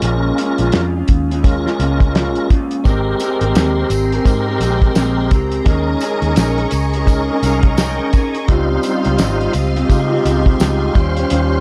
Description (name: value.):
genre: indie pop, bedroom pop.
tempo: 85 BPM.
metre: 4/4.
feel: swing 60% on 16ths.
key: Ab major.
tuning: A4 = 439 Hz.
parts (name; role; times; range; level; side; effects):
electric guitar through a small old amp; accompaniment; 0.0-11.6 s; Bb2 to C5; -22 LUFS; equal; analog chorus, warbly pitch drift.
tonewheel organ; accompaniment; 0.0-11.6 s; G3 to Ab5; -23 LUFS; equal; chorus vibrato, fast rotary speaker.
vintage muted fingered electric bass; bass; 0.0-11.6 s; Ab1 to Db3; -21 LUFS; equal; none.
cloth-damped thuddy drum kit; drums; 0.0-11.5 s; hi-hat, kick drum, snare drum; -18 LUFS; equal; none.
ensemble organ-string; sustained chords; 2.8-11.6 s; Ab3 to Db6; -28 LUFS; equal; ensemble chorus.
tambourine; percussion; 2.9-10.8 s; none; -36 LUFS; equal; none.
room: light reverb.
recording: dark, warm production.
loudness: -16 LUFS.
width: mono.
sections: 0.0-11.6 A section.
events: tonewheel organ fill 7.1-8.5.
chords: 0.0 Bbm7; 2.8 Abmaj9; 5.7 Eb7sus4; 8.5 Dbmaj9#11; 10.9 Eb13.